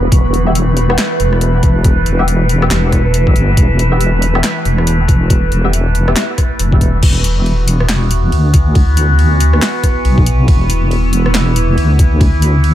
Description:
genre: deep dubstep.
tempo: 139 BPM.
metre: 4/4.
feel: swing 60% on 16ths, half-time.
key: E minor.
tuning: A4 = 438 Hz.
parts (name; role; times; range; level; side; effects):
overtone-sweeping drone; sustained chords; 0.0-12.7 s; E3 to B4; -18 LUFS; right 1 dB; chorus, built-in reverb, phaser.
deep soft wobble bass; bass; 0.0-12.7 s; E1 to D2; -12 LUFS; equal; chorus.
flickering grainy texture; texture; 0.0-7.0 s; B4; -26 LUFS; right 1 dB; built-in reverb.
deep house drum kit; drums; 0.1-12.7 s; crash cymbal, handclaps, hi-hat, ride cymbal, rim click, snare drum; -20 LUFS; left 1 dB; overdrive.
electronic kick drum; drums; 0.1-12.3 s; none; -12 LUFS; equal; none.
filtered dub chord stab; stabs; 0.5-6.2 s; B3 to E5; -23 LUFS; left 3 dB; phaser, analog chorus, dub echo.
room: little or no reverb.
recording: none.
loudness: -10 LUFS.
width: side -12 dB against mid.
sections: 0.0-7.0 A section; 7.0-12.7 A section.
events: drop 0.0-7.0, 7.0-12.7.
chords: 0.0 Em; 7.0 E5.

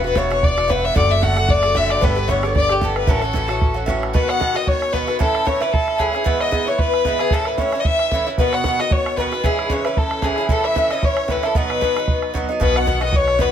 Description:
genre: celtic folk, Celtic reel.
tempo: 226 BPM.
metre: 4/4.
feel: swing 56% on 8ths.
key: A mixolydian, B mixolydian from 4.1 s.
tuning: A4 = 440 Hz.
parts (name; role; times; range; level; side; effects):
rich fiddle; melody; 0.0-13.5 s; G4 to F#5; -21 LUFS; left 3 dB; none.
rich fiddle; second line; 0.0-13.5 s; G4 to F#5; -24 LUFS; left 5 dB; slapback echo.
Irish bouzouki; accompaniment; 0.0-13.5 s; G2 to G4; -22 LUFS; right 4 dB; none.
upright bass; bass; 0.0-4.1, 12.6-13.5 s; E1 to B1; -22 LUFS; equal; none.
bodhran; percussion; 0.2-13.5 s; none; -22 LUFS; right 1 dB; none.
room: moderate small room reverb, RT60 0.5 s.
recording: none.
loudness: -16 LUFS.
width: side -9 dB against mid.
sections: 0.0-4.1 A section; 4.1-12.6 B section.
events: none.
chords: 0.0 Emadd9; 1.0 D/F#; 2.0 Gadd9; 3.1 A6; 4.1 B; 5.2 A; 6.3 E/G#; 7.3 A; 8.4 B; 9.4 C#m; 10.5 A; 11.6 B.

